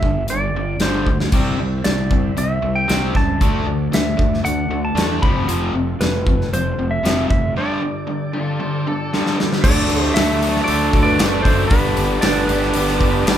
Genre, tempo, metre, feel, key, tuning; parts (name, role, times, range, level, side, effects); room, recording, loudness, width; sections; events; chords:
classic rock; 116 BPM; 4/4; straight; A4 = 440 Hz
clean lap steel guitar; melody; 0.0-13.4 s; B4 to B5; -23 LUFS; equal
raw garage guitar; riff; 0.0-13.4 s; F2 to D4; -21 LUFS; equal; overdrive
fuzz fingered electric bass; bass; 0.0-13.4 s; F1 to E2; -23 LUFS; equal; overdrive
big rock drum kit; drums; 0.0-13.4 s; crash cymbal, hi-hat, kick drum, snare drum, splash cymbal; -19 LUFS; equal
tonewheel organ; sustained chords; 1.3-13.4 s; B3 to F5; -32 LUFS; right 1 dB
biting lead guitar; second line; 8.3-9.4 s; F4 to C5; -29 LUFS; left 2 dB; overdrive
lead guitar through a small cranked amp; second line; 9.6-13.4 s; G4 to B4; -27 LUFS; right 3 dB; overdrive
moderate large studio reverb, RT60 1.2 s; band playing live in one room; -16 LUFS; side -10 dB against mid
0.0-9.6 A section; 9.6-13.4 B section
drum fill 1.1, 9.1-9.6; break 7.6-9.6
0.0 G5; 1.3 C; 3.4 D; 5.2 F; 7.6 Gsus2; 9.6 D; 11.7 G